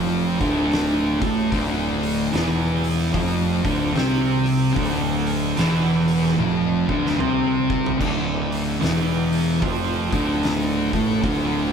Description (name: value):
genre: stoner and doom metal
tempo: 74 BPM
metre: 4/4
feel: swing 62% on 8ths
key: D minor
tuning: A4 = 440 Hz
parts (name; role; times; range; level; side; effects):
- thick fuzz guitar; riff; 0.0-11.7 s; D2 to C4; -23 LUFS; left 5 dB; distortion
- thick fuzz guitar; riff; 0.0-11.7 s; D2 to C4; -23 LUFS; right 6 dB; distortion
- fuzz fingered electric bass; bass; 0.0-11.7 s; D1 to C2; -28 LUFS; equal; overdrive
- oversized low-tuned drum kit; drums; 0.4-11.5 s; crash cymbal, hi-hat, kick drum, snare drum, toms; -28 LUFS; left 1 dB; none
room: wet large studio reverb, RT60 1.4 s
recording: band playing live in one room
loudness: -19 LUFS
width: side -7 dB against mid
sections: 0.0-11.7 A section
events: drum fill 6.4-8.0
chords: 0.0 Dm